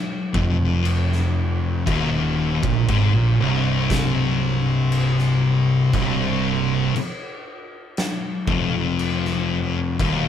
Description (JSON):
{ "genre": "stoner and doom metal", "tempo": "59 BPM", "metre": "4/4", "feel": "straight", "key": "C minor", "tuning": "A4 = 436 Hz", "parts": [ { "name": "thick fuzz guitar", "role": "riff", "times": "0.3-10.3 s", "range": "C2 to Bb2", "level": "-22 LUFS", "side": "left 5 dB", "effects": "distortion" }, { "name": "thick fuzz guitar", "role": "riff", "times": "0.3-10.3 s", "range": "C2 to Bb2", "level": "-22 LUFS", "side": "right 3 dB", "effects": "distortion" }, { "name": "fuzz fingered electric bass", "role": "bass", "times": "0.3-10.3 s", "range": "C1 to Bb1", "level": "-27 LUFS", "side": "equal", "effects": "overdrive" }, { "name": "oversized low-tuned drum kit", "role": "drums", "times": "0.3-10.2 s", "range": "crash cymbal, kick drum, snare drum", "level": "-27 LUFS", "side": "equal", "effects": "none" } ], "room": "moderate studio reverb, RT60 0.5 s", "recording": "band playing live in one room", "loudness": "-18 LUFS", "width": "side -9 dB against mid", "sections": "0.0-10.3 A section", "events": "none", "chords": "0.0 Cm", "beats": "0.85 | 1.87 2.89 3.90 4.92 | 5.94 6.95 7.97 8.98 | 9.99" }